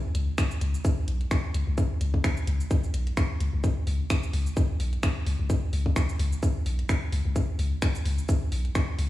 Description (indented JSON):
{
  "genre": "minimal techno",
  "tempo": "129 BPM",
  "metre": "4/4",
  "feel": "swing 56% on 16ths",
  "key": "unclear",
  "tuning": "A4 = 440 Hz",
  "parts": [
    { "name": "punchy sub bass", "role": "bass", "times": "0.1-9.1 s", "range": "B1 to C#2", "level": "-26 LUFS", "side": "left 1 dB", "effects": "sidechain pumping" },
    { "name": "garage drum kit", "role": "drums", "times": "0.1-9.1 s", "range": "finger snaps, hi-hat, shaker", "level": "-35 LUFS", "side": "equal", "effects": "none" },
    { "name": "electronic kick drum", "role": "drums", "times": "0.4-8.9 s", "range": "none", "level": "-24 LUFS", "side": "equal", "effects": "none" }
  ],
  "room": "little or no reverb",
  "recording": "played on a big sound system in a bare room, large studio reverb",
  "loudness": "-24 LUFS",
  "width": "side -15 dB against mid",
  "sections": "0.0-9.1 A section",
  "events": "none",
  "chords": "none",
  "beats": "0.38 0.85 1.31 | 1.78 2.24 2.71 3.17 | 3.64 4.10 4.57 5.03 | 5.50 5.96 6.43 6.89 | 7.36 7.82 8.29 8.75"
}